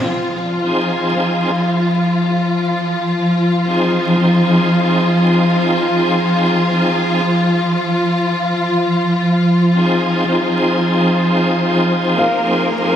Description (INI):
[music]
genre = trip hop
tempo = 79 BPM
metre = 4/4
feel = swing 60% on 16ths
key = F minor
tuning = A4 = 439 Hz
[part]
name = rich symphonic string section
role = sustained chords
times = 0.0-13.0 s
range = F3 to Bb4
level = -15 LUFS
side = equal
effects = none
[part]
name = bright tonewheel organ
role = accompaniment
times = 0.6-13.0 s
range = F3 to Ab4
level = -18 LUFS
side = equal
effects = chorus vibrato, stopped rotary speaker, tremolo, tape echo
[part]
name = felt-muted upright piano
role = melody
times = 12.2-13.0 s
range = F5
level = -22 LUFS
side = left 2 dB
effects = tape echo
[sound]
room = wet lush hall reverb, RT60 2.8 s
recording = dreamy mix soaked in reverb, vinyl crackle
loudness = -13 LUFS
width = side -10 dB against mid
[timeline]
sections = 0.0-13.0 A section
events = none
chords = 0.0 Fm7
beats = | 0.04 0.80 1.56 2.31 | 3.08 3.83 4.59 5.35 | 6.11 6.87 7.63 8.39 | 9.15 9.91 10.67 11.43 | 12.19 12.95